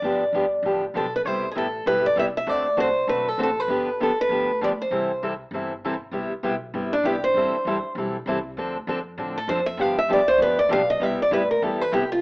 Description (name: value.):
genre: acoustic string swing (jazz manouche).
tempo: 197 BPM.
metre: 4/4.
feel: swing 58% on 8ths.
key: C major.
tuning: A4 = 440 Hz.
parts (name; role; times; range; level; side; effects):
picked steel-string acoustic guitar; melody; 0.0-12.2 s; D4 to F5; -21 LUFS; equal; plate reverb.
picked steel-string acoustic guitar; accompaniment; 0.0-12.0 s; C3 to A4; -25 LUFS; equal; none.
upright bass; bass; 0.0-12.2 s; G1 to A2; -38 LUFS; equal; none.
room: moderate club reverb, RT60 0.7 s.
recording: AM radio sound.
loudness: -21 LUFS.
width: side -26 dB against mid.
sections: 0.0-6.1 A section; 6.1-12.2 B section.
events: steel-string acoustic guitar solo 6.1-12.2.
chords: 0.0 G7; 1.2 Cmaj7; 2.5 D7; 3.7 G7; 4.9 C6; 6.1 Cmaj7; 7.3 Am7; 8.6 Dm7; 9.8 G7; 11.0 Cmaj7.